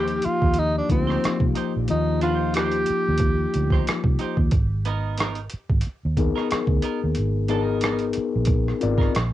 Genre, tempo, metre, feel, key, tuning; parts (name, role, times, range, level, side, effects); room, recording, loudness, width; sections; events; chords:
R&B, neo-soul; 91 BPM; 4/4; swing 56% on 16ths; A4 = 439 Hz
breathy tenor saxophone; melody; 0.0-3.8 s; C4 to G4; -25 LUFS; right 1 dB; cassette tape, analog delay
clean electric guitar; second line; 0.0-9.1 s; Cb4 to C5; -32 LUFS; right 9 dB
mellow tine electric piano; accompaniment; 0.0-9.2 s; F3 to D5; -25 LUFS; left 6 dB
vintage muted fingered electric bass; bass; 0.0-9.3 s; Ab1 to Eb2; -25 LUFS; right 1 dB; transformer saturation
boom bap sampler-style drum kit; drums; 0.1-9.3 s; hi-hat, kick drum, rim click; -23 LUFS; right 1 dB; cassette tape
light reverb; home recording on cassette; -20 LUFS; side -13 dB against mid
0.0-9.3 A section
0.0 Eb6; 4.5 Abmadd9